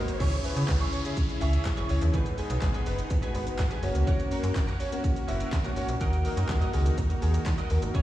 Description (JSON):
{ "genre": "dance-pop", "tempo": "124 BPM", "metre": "4/4", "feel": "straight", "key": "C# dorian", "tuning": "A4 = 444 Hz", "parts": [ { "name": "warm concert grand piano", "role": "accompaniment", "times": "0.0-7.9 s", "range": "A#3 to G#4", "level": "-35 LUFS", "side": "left 2 dB", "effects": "sidechain pumping" }, { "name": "soft supersaw", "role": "sustained chords", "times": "0.0-8.0 s", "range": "C#3 to A#4", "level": "-38 LUFS", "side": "equal", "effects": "sidechain pumping" }, { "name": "slap-like FM bass", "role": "bass", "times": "0.0-8.0 s", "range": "F#1 to D#3", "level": "-27 LUFS", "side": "equal", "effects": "sidechain pumping" }, { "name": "riser and downlifter", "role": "sound effects", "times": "0.0-4.1 s", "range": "none", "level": "-41 LUFS", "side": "right 2 dB", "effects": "none" }, { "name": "twelve-string electric guitar", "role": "riff", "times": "0.1-8.0 s", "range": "C#4 to D#5", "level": "-39 LUFS", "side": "right 4 dB", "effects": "ensemble chorus" }, { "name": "pop drum kit", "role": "drums", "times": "0.1-8.0 s", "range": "crash cymbal, handclaps, hi-hat, kick drum, shaker, snare drum", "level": "-29 LUFS", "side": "equal", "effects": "none" }, { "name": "fat analog lead", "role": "melody", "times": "0.2-8.0 s", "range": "G#4 to E5", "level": "-38 LUFS", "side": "equal", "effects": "sidechain pumping, digital delay" }, { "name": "group handclap", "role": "percussion", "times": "0.7-7.6 s", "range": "none", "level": "-49 LUFS", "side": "left 7 dB", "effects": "none" } ], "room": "light reverb, digital ambience", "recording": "played on a big sound system in a bare room, stone room reverb, small room ambience", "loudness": "-25 LUFS", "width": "side -14 dB against mid", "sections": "0.2-8.0 A section", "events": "drum fill 0.0; riser 0.0; drop 0.2-8.0", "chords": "0.2 C#m; 2.1 G#m; 3.8 F#; 6.0 D#m" }